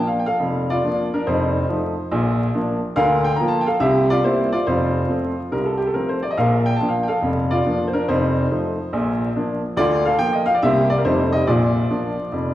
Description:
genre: jazz, stride piano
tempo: 141 BPM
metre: 4/4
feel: swing 64% on 8ths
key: Bb major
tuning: A4 = 442 Hz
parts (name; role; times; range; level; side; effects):
- clear upright piano; solo; 0.0-12.5 s; F1 to Bb5; -17 LUFS; equal; none
room: wet recital hall reverb, RT60 1.8 s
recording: recorded in a church or concert hall, vinyl crackle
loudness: -17 LUFS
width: side -14 dB against mid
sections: 0.0-12.5 A section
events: none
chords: 0.0 Bb; 1.3 F7; 2.1 Bb; 3.0 Bb/D; 3.8 C7; 4.7 F; 6.4 Bb; 8.1 F7; 8.9 Bb; 9.8 Bb/D; 10.6 C7; 11.0 F13; 11.5 Bb

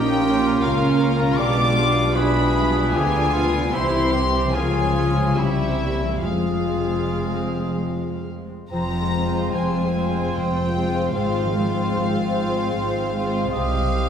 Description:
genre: classical, slow romantic movement for symphony orchestra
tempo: 70-78 BPM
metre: 3/4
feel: rubato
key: F minor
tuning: A4 = 438 Hz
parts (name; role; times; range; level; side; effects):
- warm symphonic violin section; melody; 0.0-14.1 s; E5 to D6; -27 LUFS; left 4 dB; none
- clear clarinet; second line; 0.0-14.1 s; E4 to D5; -30 LUFS; equal; none
- warm cor anglais; second line; 0.0-14.1 s; E4 to Eb5; -30 LUFS; right 2 dB; none
- warm symphonic violin section; second line; 0.0-14.1 s; B3 to C5; -29 LUFS; left 2 dB; none
- dark symphonic viola section; accompaniment; 0.0-14.1 s; E3 to Eb4; -27 LUFS; right 1 dB; none
- mellow French horn section; sustained chords; 0.0-14.1 s; G3 to G4; -28 LUFS; equal; none
- concert harp; arpeggios; 0.0-14.1 s; Ab2 to C6; -29 LUFS; left 4 dB; none
- warm studio cello section; bass; 0.0-14.1 s; C2 to D3; -28 LUFS; right 1 dB; none
- warm symphonic double bass section; bass; 0.0-14.1 s; F1 to D2; -27 LUFS; right 1 dB; none
- clear bassoon; accompaniment; 8.7-14.1 s; C4; -30 LUFS; right 2 dB; none
room: wet recital hall reverb, RT60 1.3 s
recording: recorded in a church or concert hall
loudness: -19 LUFS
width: side -8 dB against mid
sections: 0.0-8.7 A section; 8.7-14.1 B section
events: none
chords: 0.0 Bbm; 1.4 Bdim7; 3.7 C; 4.6 Db; 5.4 C; 6.2 Fm; 11.2 Fm/Ab; 13.5 Cm

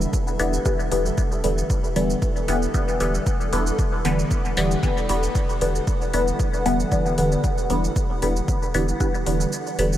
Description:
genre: dub techno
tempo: 115 BPM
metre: 4/4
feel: swing 54% on 16ths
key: E minor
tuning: A4 = 438 Hz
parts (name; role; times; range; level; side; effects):
- granular cloud pad; sustained chords; 0.0-10.0 s; G3 to F#5; -32 LUFS; left 1 dB; built-in reverb, lush chorus, sidechain pumping
- filtered dub chord stab; stabs; 0.0-10.0 s; D3 to B3; -23 LUFS; equal; phaser, sidechain pumping, dub echo
- soft dub sub bass; bass; 0.0-10.0 s; E1; -26 LUFS; equal; sidechain pumping
- electronic shaker and hi-hat; drums; 0.0-10.0 s; none; -35 LUFS; right 1 dB; overdrive
- electronic kick drum; drums; 0.1-9.1 s; none; -24 LUFS; equal; overdrive
room: moderate huge ambient reverb, RT60 6.4 s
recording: dreamy mix soaked in reverb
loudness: -20 LUFS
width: side -12 dB against mid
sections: 0.0-10.0 A section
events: kick drops out 9.5-10.0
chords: 0.0 Em7

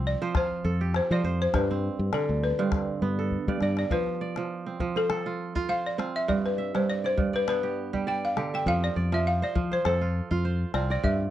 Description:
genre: west african traditional, West African string and xylophone music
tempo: 101 BPM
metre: 4/4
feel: swing 55% on 16ths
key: F lydian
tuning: A4 = 440 Hz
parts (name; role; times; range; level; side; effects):
- kora; arpeggios; 0.0-11.3 s; G2 to E5; -30 LUFS; right 5 dB; none
- fingered electric bass; bass; 0.0-3.8, 8.7-11.3 s; C2 to G3; -27 LUFS; left 1 dB; none
- balafon; melody; 0.1-11.3 s; A4 to G5; -29 LUFS; left 2 dB; none
- calabash; percussion; 0.3-11.2 s; none; -31 LUFS; left 3 dB; none
room: light reverb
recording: dry, close 1970s-style studio recording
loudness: -25 LUFS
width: side -12 dB against mid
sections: 0.0-3.9 A section; 3.9-11.3 B section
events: drum fill 3.3-3.9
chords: 0.0 F; 1.5 G; 3.9 F; 6.3 G; 8.7 F

